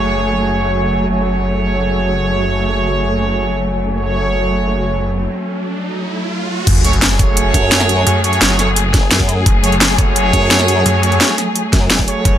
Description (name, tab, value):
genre	dark technical drum and bass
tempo	172 BPM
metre	4/4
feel	straight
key	F# minor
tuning	A4 = 440 Hz
part	muted studio string section	sustained chords	0.0-12.4 s	F#3 to G#4	-20 LUFS	left 2 dB	vintage 12-bit sampler grit, sidechain pumping
part	clear brass ensemble	stabs	0.0-12.4 s	A3 to C#5	-19 LUFS	right 3 dB	digital delay
part	snarling distorted saw bass	bass	0.0-12.4 s	F#1 to F#2	-18 LUFS	equal	distortion, overdrive
part	ethereal airy pad	texture	0.0-5.3 s	F#4 to G#5	-25 LUFS	equal	ensemble chorus, built-in reverb, phaser, sidechain pumping
part	riser and sub drop	sound effects	5.0-8.1 s	none	-22 LUFS	equal	none
part	drum and bass drum kit	drums	6.7-12.3 s	crash cymbal, hi-hat, snare drum	-15 LUFS	equal	overdrive, low-pass filter on hats, low-pass filter on cymbals, low-pass filter on snare, low-pass filter on room
part	electronic kick drum	drums	6.7-12.3 s	none	-14 LUFS	equal	overdrive
part	formant-sweep wobble bass	bass	7.5-12.1 s	E1 to F#2	-17 LUFS	equal	chorus
room	light reverb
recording	none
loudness	-12 LUFS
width	side -10 dB against mid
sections	0.0-6.7 A section; 6.7-12.4 B section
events	riser 5.0-6.7; break 5.3-6.7; drop 6.7-12.4; impact 6.7-8.1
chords	0.0 F#madd9